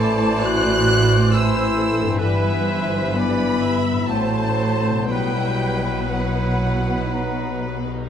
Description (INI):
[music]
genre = classical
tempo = 58-70 BPM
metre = 3/4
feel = rubato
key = E minor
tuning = A4 = 440 Hz
[part]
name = warm symphonic violin section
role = melody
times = 0.0-7.7 s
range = E5 to F#6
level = -28 LUFS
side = left 1 dB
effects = none
[part]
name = bright clarinet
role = second line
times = 0.0-7.8 s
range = D#4 to E4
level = -32 LUFS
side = equal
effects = none
[part]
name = clear oboe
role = second line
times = 0.0-7.8 s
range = B4 to C5+23c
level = -31 LUFS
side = right 2 dB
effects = none
[part]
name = flute section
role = second line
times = 0.0-7.7 s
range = E5 to F#6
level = -29 LUFS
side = left 3 dB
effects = none
[part]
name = rich studio violin section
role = second line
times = 0.0-8.1 s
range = G3 to C5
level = -32 LUFS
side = left 3 dB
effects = none
[part]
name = warm bassoon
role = accompaniment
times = 0.0-7.8 s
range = E3 to F#3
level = -30 LUFS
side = right 1 dB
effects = none
[part]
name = warm symphonic viola section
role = accompaniment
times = 0.0-7.7 s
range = A4 to E5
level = -30 LUFS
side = right 2 dB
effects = none
[part]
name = dark French horn section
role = sustained chords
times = 0.0-7.6 s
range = E3 to F#4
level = -24 LUFS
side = left 3 dB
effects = none
[part]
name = concert harp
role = arpeggios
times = 0.0-8.1 s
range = G2 to B4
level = -29 LUFS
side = left 9 dB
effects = none
[part]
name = clear symphonic double bass section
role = bass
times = 0.0-7.9 s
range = G1 to B1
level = -26 LUFS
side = right 4 dB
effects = none
[part]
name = rich symphonic cello section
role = bass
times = 0.0-7.9 s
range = G2 to B2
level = -25 LUFS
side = right 3 dB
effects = none
[sound]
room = moderate scoring stage reverb, RT60 1.6 s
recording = none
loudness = -17 LUFS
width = side -8 dB against mid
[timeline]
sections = 0.0-8.1 A section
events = none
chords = 0.0 Am; 2.2 Em/G; 4.1 F#m7b5/A; 5.1 Bsus4; 7.1 B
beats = 0.45 1.33 | 2.20 3.16 4.09 | 5.08 6.11 7.14